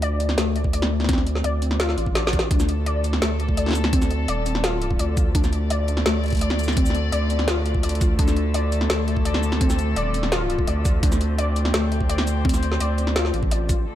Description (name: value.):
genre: half-time drum and bass.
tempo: 169 BPM.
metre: 4/4.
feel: half-time.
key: unclear.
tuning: A4 = 440 Hz.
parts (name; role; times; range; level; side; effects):
warbly dusty pluck; arpeggios; 0.0-13.7 s; A3 to D5; -27 LUFS; left 3 dB; ensemble chorus, digital delay.
saturated sub bass; bass; 0.0-13.9 s; Eb1 to D2; -23 LUFS; equal; tube saturation.
drum and bass drum kit; drums; 0.0-13.8 s; hi-hat, shaker, snare drum; -26 LUFS; right 1 dB; low-pass filter on snare, low-pass filter on hats, low-pass filter on perc, low-pass filter on room.
electronic kick drum; drums; 0.6-13.8 s; none; -22 LUFS; equal; overdrive.
rich chamber string section; sustained chords; 2.5-13.9 s; D3 to D5; -30 LUFS; left 2 dB; sidechain pumping.
room: light reverb, digital ambience.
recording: none.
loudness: -19 LUFS.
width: side -12 dB against mid.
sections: 0.0-13.9 A section.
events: drum fill 2.2-2.5.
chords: 0.0 D5.